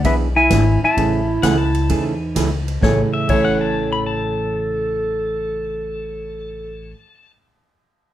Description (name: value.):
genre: country, western swing.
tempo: 129 BPM.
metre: 4/4.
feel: swing 68% on 8ths.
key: A major.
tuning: A4 = 439 Hz.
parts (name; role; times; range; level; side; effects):
clean lap steel guitar; melody; 0.0-6.9 s; B4 to A5; -20 LUFS; left 3 dB; none.
mellow clarinet; second line; 0.0-6.9 s; B3 to A4; -23 LUFS; right 2 dB; none.
hollow-body jazz guitar; accompaniment; 0.0-7.0 s; A2 to G#4; -23 LUFS; right 4 dB; none.
upright bass; bass; 0.0-6.9 s; G#1 to E2; -22 LUFS; left 1 dB; none.
swinging big-band drum kit; drums; 0.0-3.5 s; crash cymbal, hi-hat, kick drum, ride cymbal, snare drum; -25 LUFS; left 1 dB; none.
pedal steel guitar; second line; 1.4-7.3 s; E5 to B5; -27 LUFS; left 6 dB; none.
room: moderate studio reverb, RT60 0.8 s.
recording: none.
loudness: -16 LUFS.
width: side -12 dB against mid.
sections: 0.0-2.8 A section; 2.8-6.6 B section.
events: none.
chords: 0.0 E7; 1.0 Amaj7.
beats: 0.04 0.50 | 0.97 1.43 1.90 2.37 | 2.83 3.30 3.77 4.23 | 4.70 5.16 5.63 6.09.